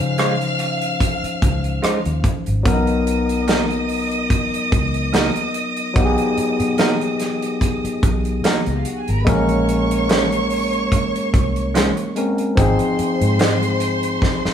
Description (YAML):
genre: lush 1970s-style soul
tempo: 73 BPM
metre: 4/4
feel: swing 54% on 16ths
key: unclear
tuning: A4 = 438 Hz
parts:
  - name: rich studio violin section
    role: second line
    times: 0.0-14.5 s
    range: D#4 to F6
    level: -25 LUFS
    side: right 1 dB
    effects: none
  - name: overdriven tine electric piano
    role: accompaniment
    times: 0.0-14.5 s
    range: F3 to C5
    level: -21 LUFS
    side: left 2 dB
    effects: none
  - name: vintage muted fingered electric bass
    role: bass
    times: 0.0-14.5 s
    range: Ab1 to Db3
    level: -23 LUFS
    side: equal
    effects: none
  - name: modern studio drum kit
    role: drums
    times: 0.0-14.5 s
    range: hi-hat, kick drum, rim click, snare drum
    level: -20 LUFS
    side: equal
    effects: none
  - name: semi-hollow electric guitar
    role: riff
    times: 0.2-13.6 s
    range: Ab3 to C5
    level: -23 LUFS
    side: right 2 dB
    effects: none
room: moderate studio reverb, RT60 0.9 s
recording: band playing live in one room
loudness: -16 LUFS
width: side -9 dB against mid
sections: 0.0-14.5 A section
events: drum fill 14.2-14.5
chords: 0.0 Dbmaj9; 2.7 Bmaj7; 9.3 Bbm9; 12.6 Ab6